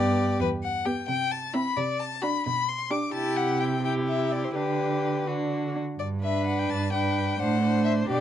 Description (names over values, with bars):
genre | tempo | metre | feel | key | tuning
quick classical-period movement for string quartet | 87 BPM (dotted quarters) | 6/8 | rubato | G major | A4 = 441 Hz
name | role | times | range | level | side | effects
clear violin | melody | 0.0-8.2 s | B4 to D6 | -29 LUFS | left 6 dB | none
rich violin | second line | 0.0-8.2 s | E4 to C5 | -31 LUFS | left 2 dB | none
warm viola | accompaniment | 0.0-8.2 s | B3 to E4 | -30 LUFS | right 2 dB | none
rich cello | bass | 0.0-8.2 s | E2 to D3 | -29 LUFS | right 4 dB | none
room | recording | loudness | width
light reverb | dark, warm production | -24 LUFS | side -10 dB against mid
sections
0.0-6.0 A section; 6.0-8.2 B section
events
none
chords
0.4 Em; 1.1 Cmaj7; 1.8 D7/C; 2.5 G/B; 3.1 C; 4.6 G/D; 6.0 G; 7.4 D7/A